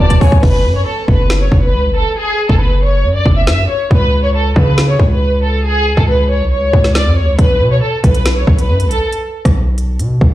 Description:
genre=hip hop, drill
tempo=138 BPM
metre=4/4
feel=half-time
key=F# minor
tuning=A4 = 444 Hz
part: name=warm studio violin section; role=melody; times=0.0-9.1 s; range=G#4 to E5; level=-16 LUFS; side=equal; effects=low-pass filter
part: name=hard-hitting 808-style bass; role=bass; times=0.0-10.3 s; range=E1 to C#3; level=-13 LUFS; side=equal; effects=none
part: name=drill drum kit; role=drums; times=0.0-10.3 s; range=crash cymbal, hi-hat, kick drum, rim click, snare drum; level=-12 LUFS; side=equal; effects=none
room=digital ambience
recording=played on a big sound system in a bare room, large studio reverb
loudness=-10 LUFS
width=side -15 dB against mid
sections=0.4-10.3 A section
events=drum fill 0.0-0.4; break 0.4-7.4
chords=0.4 F#5; 3.9 C#7(no3); 7.4 B5

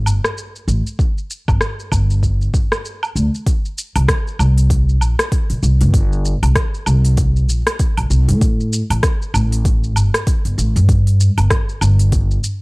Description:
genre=organic downtempo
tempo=97 BPM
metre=4/4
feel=swing 59% on 16ths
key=unclear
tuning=A4 = 440 Hz
part: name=upright bass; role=bass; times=0.0-12.4 s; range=G1 to A2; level=-14 LUFS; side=equal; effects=sidechain pumping
part: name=afro-pop drum kit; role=drums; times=0.1-12.6 s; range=hi-hat, rim click, shaker, woodblock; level=-22 LUFS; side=equal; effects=studio ambience
part: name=electronic kick drum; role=drums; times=1.0-12.3 s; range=none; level=-17 LUFS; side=equal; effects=overdrive, studio ambience
room=digital ambience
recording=dry, gritty hardware recording, cassette tape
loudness=-14 LUFS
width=side -27 dB against mid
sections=0.0-3.5 A section; 3.5-12.6 B section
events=none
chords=none

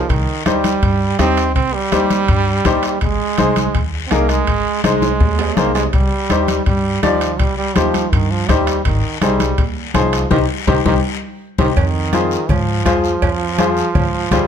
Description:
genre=latin, cumbia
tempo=165 BPM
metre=4/4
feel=straight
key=C minor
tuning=A4 = 439 Hz
part: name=brilliant trombone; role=second line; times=0.0-14.5 s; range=Eb3 to C4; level=-20 LUFS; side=right 5 dB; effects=none
part: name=upright bass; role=bass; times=0.0-14.5 s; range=Ab1 to Ab2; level=-20 LUFS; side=equal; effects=none
part: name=bombo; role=percussion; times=0.1-14.5 s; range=none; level=-21 LUFS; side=left 1 dB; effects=none
part: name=guiro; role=percussion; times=0.1-14.5 s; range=none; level=-29 LUFS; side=left 9 dB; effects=none
part: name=timbales and cowbell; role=percussion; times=0.1-14.5 s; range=none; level=-27 LUFS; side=right 7 dB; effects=none
part: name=bright upright piano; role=accompaniment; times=0.5-14.5 s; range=Eb4 to Eb5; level=-19 LUFS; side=left 4 dB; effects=none
part: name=congas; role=percussion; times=0.5-14.5 s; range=none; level=-22 LUFS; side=left 2 dB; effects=none
room=light reverb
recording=none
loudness=-14 LUFS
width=side -8 dB against mid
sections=0.0-11.8 A section; 11.8-14.5 B section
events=drum fill 5.0-5.9; band accent 10.3-11.8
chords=0.1 Cm; 3.0 Ab; 5.9 Cm; 8.9 Ab; 10.3 Cm; 11.8 Fm

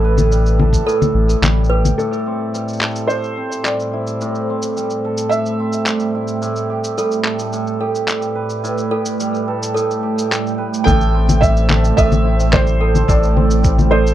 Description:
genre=folktronica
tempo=108 BPM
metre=4/4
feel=straight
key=A minor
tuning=A4 = 440 Hz
part: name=warm analog pad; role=sustained chords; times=0.0-14.1 s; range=A2 to G5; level=-24 LUFS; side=right 5 dB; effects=chorus
part: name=cimbalom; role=arpeggios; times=0.0-14.1 s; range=A2 to B4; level=-21 LUFS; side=right 1 dB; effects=vintage 12-bit sampler grit, low-pass filter, tape echo
part: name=round analog bass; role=bass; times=0.0-1.9, 10.9-14.1 s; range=A1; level=-15 LUFS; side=equal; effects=none
part: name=electronic congas, shaker and handclaps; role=drums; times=0.2-14.1 s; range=none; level=-20 LUFS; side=left 3 dB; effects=none
part: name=electronic kick drum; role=drums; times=0.7-0.8, 10.9-13.8 s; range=none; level=-17 LUFS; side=equal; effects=none
part: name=toy piano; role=second line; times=0.9-2.0, 7.0-14.1 s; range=A4 to B4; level=-24 LUFS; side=right 3 dB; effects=tape echo
part: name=felt-muted upright piano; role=melody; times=2.0-6.1, 10.8-14.1 s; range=A4 to G5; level=-21 LUFS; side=right 1 dB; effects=tape echo
room=little or no reverb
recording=dry, close 1970s-style studio recording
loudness=-14 LUFS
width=side -12 dB against mid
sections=0.0-2.0 A section; 2.0-10.9 B section; 10.9-14.1 C section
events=kick drops out 0.9-2.0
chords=0.0 G/A; 2.0 Am7

